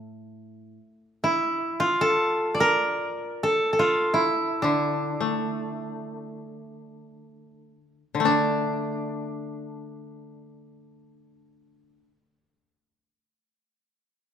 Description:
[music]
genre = japanese traditional, Japanese chamber music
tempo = free time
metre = none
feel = none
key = D hirajoshi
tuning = A4 = 442 Hz
[part]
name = koto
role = melody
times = 0.0-12.0 s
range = D4 to D5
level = -23 LUFS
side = right 1 dB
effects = none
[part]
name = koto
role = accompaniment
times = 0.0-12.1 s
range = A2 to D4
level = -28 LUFS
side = left 3 dB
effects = none
[sound]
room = moderate recital hall reverb, RT60 1.6 s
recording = minimal, uncompressed stereo recording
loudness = -22 LUFS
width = side -8 dB against mid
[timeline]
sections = 0.0-8.2 A section; 8.2-12.6 B section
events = slowing down 0.0-8.2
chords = none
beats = free time

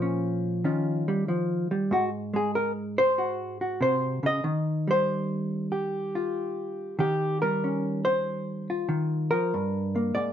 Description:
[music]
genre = solo jazz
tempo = 95 BPM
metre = 4/4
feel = swing 68% on 8ths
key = Eb mixolydian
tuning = A4 = 440 Hz
[part]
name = hollow-body jazz guitar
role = solo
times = 0.0-10.3 s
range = G2 to Eb5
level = -25 LUFS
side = equal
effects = none
[sound]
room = moderate studio reverb, RT60 0.6 s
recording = band playing live in one room, nothing above 7.7 kHz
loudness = -25 LUFS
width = side -9 dB against mid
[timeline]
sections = 0.0-10.3 A section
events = none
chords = 0.0 Bbm; 0.6 Eb9; 1.9 Ab7; 4.4 Eb9; 9.5 Gm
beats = 0.01 0.64 1.27 | 1.91 2.54 3.17 3.81 | 4.44 5.08 5.71 6.35 | 6.98 7.61 8.25 8.88 | 9.52 10.15

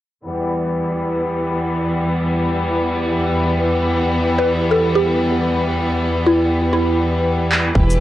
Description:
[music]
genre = future garage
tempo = 128 BPM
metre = 4/4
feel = swing 63% on 16ths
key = E minor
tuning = A4 = 444 Hz
[part]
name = bright symphonic string section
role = sustained chords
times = 0.3-8.0 s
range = E2 to B4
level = -17 LUFS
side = equal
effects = sidechain pumping, low-pass filter
[part]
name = mallet-like synth pluck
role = melody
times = 4.4-7.1 s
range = E4 to B4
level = -19 LUFS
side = right 1 dB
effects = phaser, analog chorus, cassette tape, analog delay
[part]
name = electronic handclaps and shaker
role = drums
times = 7.5-8.0 s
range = none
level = -18 LUFS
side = equal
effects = overdrive, low-pass filter on snare, cassette tape, low-pass filter on perc, low-pass filter on room
[part]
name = warm sub bass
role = bass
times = 7.8-8.0 s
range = E1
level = -15 LUFS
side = equal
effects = tube saturation, sidechain pumping
[part]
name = electronic kick drum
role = drums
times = 7.8-7.9 s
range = none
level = -18 LUFS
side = equal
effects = overdrive, cassette tape
[part]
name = flickering grainy texture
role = texture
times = 7.9-8.0 s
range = B4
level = -26 LUFS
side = right 1 dB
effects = built-in reverb
[sound]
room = light reverb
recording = home recording on cassette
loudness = -16 LUFS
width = side -14 dB against mid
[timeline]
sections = 0.3-7.8 A section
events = filter sweep on string section 0.3-7.8; drum fill 7.5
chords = 0.3 Em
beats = | 0.25 0.72 1.19 1.66 | 2.13 2.60 3.07 3.54 | 4.00 4.47 4.94 5.41 | 5.88 6.35 6.82 7.29 | 7.75

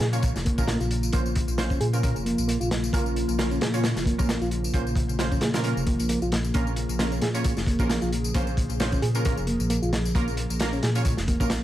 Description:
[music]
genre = breakbeat, breaks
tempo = 133 BPM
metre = 4/4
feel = swing 55% on 16ths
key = unclear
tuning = A4 = 440 Hz
[part]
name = warbly tape-like pad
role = sustained chords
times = 0.0-11.6 s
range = Db3 to Ab4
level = -31 LUFS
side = equal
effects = chorus, built-in reverb, sidechain pumping
[part]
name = mellow reed electric piano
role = riff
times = 0.0-11.6 s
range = Bb3 to Ab4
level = -30 LUFS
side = right 1 dB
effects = fast tremolo, ping-pong delay
[part]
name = dark detuned saw bass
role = bass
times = 0.0-11.6 s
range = F1 to Bb2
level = -28 LUFS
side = equal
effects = tube saturation
[part]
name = crunchy breakbeat drum kit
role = drums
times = 0.0-11.6 s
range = hi-hat, kick drum, snare drum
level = -27 LUFS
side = equal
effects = none
[part]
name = orchestra-hit-like synth stab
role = stabs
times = 0.1-11.5 s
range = Bb3 to Db5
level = -32 LUFS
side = right 2 dB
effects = built-in reverb, ping-pong delay
[part]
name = tambourine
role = drums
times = 0.1-11.6 s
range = none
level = -38 LUFS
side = left 4 dB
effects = overdrive
[sound]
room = light reverb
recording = vinyl crackle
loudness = -22 LUFS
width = side -13 dB against mid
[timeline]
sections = 0.0-11.6 A section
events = none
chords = 0.0 Bbm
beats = 0.23 0.68 | 1.13 1.58 2.03 2.48 | 2.93 3.38 3.83 4.29 | 4.74 5.19 5.64 6.09 | 6.54 6.99 7.44 7.89 | 8.35 8.80 9.25 9.70 | 10.15 10.60 11.05 11.50

